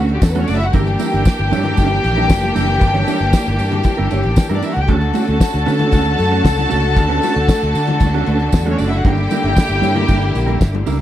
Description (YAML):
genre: disco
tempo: 116 BPM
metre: 4/4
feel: straight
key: unclear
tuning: A4 = 440 Hz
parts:
  - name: warm studio violin section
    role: second line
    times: 0.0-10.8 s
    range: G3 to A5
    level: -20 LUFS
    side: left 2 dB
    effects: tape echo
  - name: mellow electric guitar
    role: accompaniment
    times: 0.0-11.0 s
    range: G3 to C#5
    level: -22 LUFS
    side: right 6 dB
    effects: spring reverb
  - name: clear studio string section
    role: sustained chords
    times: 0.0-11.0 s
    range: D3 to G4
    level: -22 LUFS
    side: left 1 dB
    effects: none
  - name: fingered electric bass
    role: bass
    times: 0.0-11.0 s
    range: F#1 to D3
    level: -18 LUFS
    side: equal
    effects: none
  - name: damped 70s drum kit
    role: drums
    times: 0.1-11.0 s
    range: hi-hat, kick drum, snare drum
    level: -14 LUFS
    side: equal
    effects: none
  - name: congas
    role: percussion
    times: 0.2-10.9 s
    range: none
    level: -27 LUFS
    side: left 8 dB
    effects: none
  - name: tambourine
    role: percussion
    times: 0.2-11.0 s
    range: none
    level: -36 LUFS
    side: right 22 dB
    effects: none
room: little or no reverb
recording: dry, close 1970s-style studio recording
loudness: -13 LUFS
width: side -12 dB against mid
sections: 0.0-11.0 A section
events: none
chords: 0.0 Dmaj7; 0.7 Gm6; 4.9 Dmaj7; 9.0 Gm6